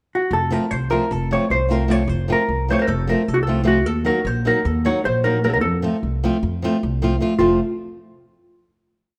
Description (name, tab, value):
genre	balkan folk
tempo	306 BPM (eighths)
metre	9/8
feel	straight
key	F phrygian dominant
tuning	A4 = 440 Hz
part	hollow-body jazz guitar	melody	0.1-7.6 s	F4 to Db5	-23 LUFS	equal	none
part	upright bass	bass	0.3-7.6 s	F1 to F2	-25 LUFS	equal	none
part	flamenco guitar	accompaniment	0.5-7.6 s	F3 to Gb4	-24 LUFS	equal	none
room	moderate recital hall reverb, RT60 1.5 s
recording	none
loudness	-20 LUFS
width	mono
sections	0.0-0.3 pickup bar; 0.3-7.4 A section; 7.4-9.1 final chord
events	none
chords	0.3 F; 3.9 Ebm; 5.6 F